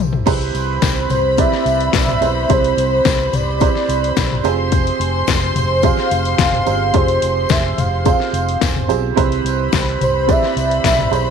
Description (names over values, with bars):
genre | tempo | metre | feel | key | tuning
piano-driven pop | 108 BPM | 4/4 | straight | C major | A4 = 442 Hz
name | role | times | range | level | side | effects
warm upright piano | accompaniment | 0.0-11.3 s | C3 to D5 | -20 LUFS | right 16 dB | none
vintage muted fingered electric bass | bass | 0.0-11.3 s | E1 to C2 | -21 LUFS | equal | none
pop drum kit | drums | 0.1-11.3 s | crash cymbal, hi-hat, kick drum, snare drum, toms | -18 LUFS | left 4 dB | none
warm studio violin section | second line | 0.3-11.3 s | C5 to C6 | -24 LUFS | left 4 dB | none
tambourine | percussion | 0.3-11.3 s | none | -36 LUFS | left 18 dB | none
warm velvety synth lead | melody | 1.1-11.3 s | C5 to F5 | -19 LUFS | equal | chorus
room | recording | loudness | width
light reverb | 1960s-style stereo with parts hard left and right | -14 LUFS | side -7 dB against mid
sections
0.3-11.3 A section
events
drum fill 0.0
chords
0.3 Cmaj7; 4.4 Fmadd9; 9.2 Cmaj7